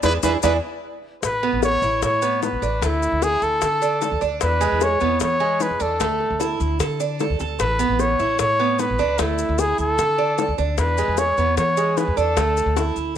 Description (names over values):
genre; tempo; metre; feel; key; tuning
latin, Cuban son and guajira; 151 BPM; 4/4; straight; A major; A4 = 440 Hz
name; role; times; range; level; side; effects
breathy trumpet; melody; 0.0-13.0 s; E4 to C#5; -21 LUFS; left 1 dB; none
Cuban tres; arpeggios; 0.0-13.1 s; G#3 to A4; -24 LUFS; right 8 dB; none
upright bass; bass; 0.0-13.2 s; A1 to E3; -25 LUFS; left 1 dB; none
bongos; percussion; 0.0-12.9 s; none; -28 LUFS; left 11 dB; none
maracas; percussion; 0.0-13.2 s; none; -34 LUFS; left 13 dB; none
room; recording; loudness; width
moderate echo chamber reverb, RT60 1.5 s, studio reverb; 1960s-style stereo with parts hard left and right; -18 LUFS; side -9 dB against mid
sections
0.0-1.2 A section; 1.2-13.2 B section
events
band accent 0.0-1.2; drum fill 12.8-13.2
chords
0.0 E7; 1.2 Aadd9; 2.8 Dsus2; 4.4 E7; 6.0 Dsus2; 7.6 Aadd9; 9.2 Dsus2; 10.8 E7; 12.4 Dsus2